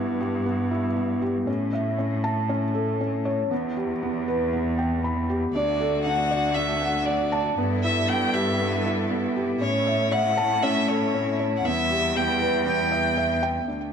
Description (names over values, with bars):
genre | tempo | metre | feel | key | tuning
piano and strings electronica | 118 BPM | 4/4 | straight | unclear | A4 = 440 Hz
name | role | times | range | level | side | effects
felt-muted upright piano | riff | 0.0-13.9 s | B3 to B5 | -25 LUFS | right 1 dB | digital delay
clear chamber cello section | bass | 0.0-13.9 s | D2 to A2 | -28 LUFS | equal | none
rich violin | melody | 5.5-13.4 s | C#5 to G5 | -25 LUFS | left 1 dB | none
dark string quartet | sustained chords | 5.5-13.9 s | G3 to B4 | -32 LUFS | left 1 dB | none
room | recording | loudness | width
moderate concert hall reverb, RT60 1.9 s | none | -22 LUFS | side -7 dB against mid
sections
0.0-13.7 A section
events
none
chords
0.0 G6; 1.5 A; 3.5 Em; 5.5 D; 7.6 G6; 9.6 A; 11.6 Em